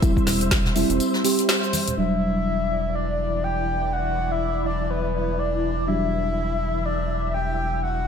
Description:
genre	deep house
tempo	123 BPM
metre	4/4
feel	swing 59% on 16ths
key	E minor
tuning	A4 = 441 Hz
part	soft string machine	sustained chords	0.0-8.1 s	E3 to E5	-29 LUFS	left 1 dB	phaser, ensemble chorus, sidechain pumping
part	mellow FM electric piano	stabs	0.0-8.1 s	F#3 to G4	-26 LUFS	right 1 dB	chorus, phaser, ping-pong delay
part	round analog bass	bass	0.0-8.1 s	E1	-28 LUFS	equal	sidechain pumping
part	deep house drum kit	drums	0.0-2.0 s	hi-hat, shaker, snare drum	-25 LUFS	left 1 dB	studio reverb
part	electronic kick drum	drums	0.0-0.6 s	none	-21 LUFS	equal	studio reverb
part	jazz brush drum kit	drums	0.0-1.9 s	hi-hat, snare drum, tambourine	-31 LUFS	left 2 dB	sidechain pumping on hats, high-pass filter on hats, studio reverb, high-pass filter on snare, sidechain pumping on perc, high-pass filter on perc, high-pass filter on room
part	congas and bongos	percussion	0.2-2.0 s	none	-33 LUFS	right 3 dB	none
part	breathy flute-like synth lead	melody	1.5-8.1 s	B4 to G5	-26 LUFS	left 2 dB	lush chorus, ping-pong delay
room	light reverb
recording	none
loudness	-21 LUFS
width	side -7 dB against mid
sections	0.0-2.0 A section; 2.0-8.1 B section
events	filter sweep on FM electric piano 0.0-2.0; band accent 1.5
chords	0.0 C; 2.0 Em9

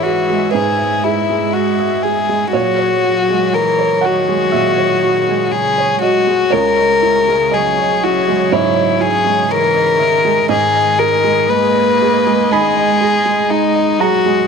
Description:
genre	neoclassical piano and strings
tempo	60 BPM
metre	4/4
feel	rubato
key	G# minor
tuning	A4 = 440 Hz
part	rich violin	melody	0.0-14.5 s	D#4 to B4	-14 LUFS	left 6 dB	none
part	rich cello	second line	0.0-14.5 s	C#3 to A#3	-22 LUFS	right 13 dB	none
part	felt-muted upright piano	accompaniment	0.0-14.5 s	C#2 to B5	-18 LUFS	right 10 dB	none
part	dark chamber string section	sustained chords	0.0-14.5 s	C#3 to E5	-24 LUFS	left 2 dB	none
room	moderate echo chamber reverb, RT60 1.4 s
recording	1960s-style stereo with parts hard left and right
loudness	-12 LUFS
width	side -6 dB against mid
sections	0.0-14.5 A section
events	none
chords	0.0 E/G#; 2.5 F#add9/A#; 6.5 C#madd9; 10.5 G#m

